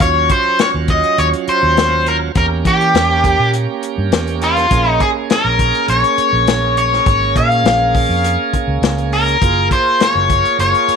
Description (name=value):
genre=straight-eighth soul blues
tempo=102 BPM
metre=4/4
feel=straight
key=Bb minor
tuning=A4 = 442 Hz
part: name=biting overdriven guitar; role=melody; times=0.0-11.0 s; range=F4 to F5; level=-14 LUFS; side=left 2 dB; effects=slapback echo
part: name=bright tonewheel organ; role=accompaniment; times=0.0-11.0 s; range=Gb3 to Ab4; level=-21 LUFS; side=right 13 dB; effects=overdrive, slow rotary speaker
part: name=vintage muted fingered electric bass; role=bass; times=0.0-10.9 s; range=Gb1 to E3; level=-18 LUFS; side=right 1 dB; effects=none
part: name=warm soul drum kit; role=drums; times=0.0-11.0 s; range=hi-hat, kick drum, snare drum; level=-18 LUFS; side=left 3 dB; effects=none
room=light reverb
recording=1960s-style stereo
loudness=-12 LUFS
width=side -6 dB against mid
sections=0.0-11.0 A section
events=none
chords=0.0 Ebm7; 2.4 Edim7; 4.7 Bbm7; 9.4 Gbmaj7